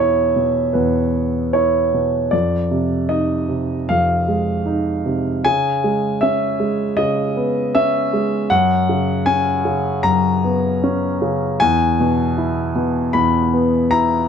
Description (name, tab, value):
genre	neoclassical minimalist piano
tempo	77 BPM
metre	4/4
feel	rubato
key	unclear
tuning	A4 = 440 Hz
part	warm grand piano	solo	0.0-14.3 s	E2 to B5	-16 LUFS	equal	none
room	moderate studio reverb, RT60 0.6 s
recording	dark, warm production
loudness	-16 LUFS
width	side -7 dB against mid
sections	0.0-14.3 A section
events	none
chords	0.0 E5; 2.3 Fm7; 5.5 C#m7; 8.5 F#sus4; 11.6 E